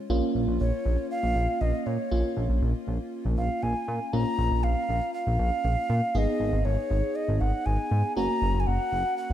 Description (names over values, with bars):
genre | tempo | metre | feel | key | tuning
synth-pop | 119 BPM | 4/4 | straight | unclear | A4 = 439 Hz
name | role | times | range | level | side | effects
FM electric piano with soft pad layer | accompaniment | 0.0-9.3 s | A#3 to G#4 | -31 LUFS | equal | chorus
chorused synth bass | bass | 0.1-9.3 s | F#1 to A#2 | -26 LUFS | equal | none
breathy alto ocarina | melody | 0.6-9.3 s | C#5 to A#5 | -30 LUFS | equal | ping-pong delay
room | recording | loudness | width
light reverb, small room ambience | dark, warm production | -24 LUFS | side -11 dB against mid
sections
0.0-4.1 A section; 4.1-9.3 B section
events
none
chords
0.1 A#m; 6.1 G#m; 8.2 F#